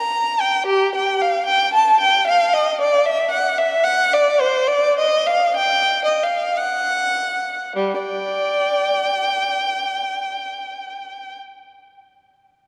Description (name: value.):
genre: classical, baroque-style suite movement for unaccompanied violin.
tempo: 46-78 BPM (dotted quarters).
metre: 6/8.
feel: rubato.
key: unclear.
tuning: A4 = 439 Hz.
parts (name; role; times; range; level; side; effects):
warm violin; solo; 0.0-11.4 s; G3 to Bb5; -19 LUFS; equal; none.
room: wet church reverb, RT60 3.4 s.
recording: dark, warm production.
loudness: -19 LUFS.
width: mono.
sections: 0.0-7.8 A section; 7.8-12.4 B section.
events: slowing down 3.0-7.8.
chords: none.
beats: | 0.67 1.47 | 2.26 3.04 | 3.83 4.66 | 5.56 6.55 | 7.75 8.92 | 10.07 11.23.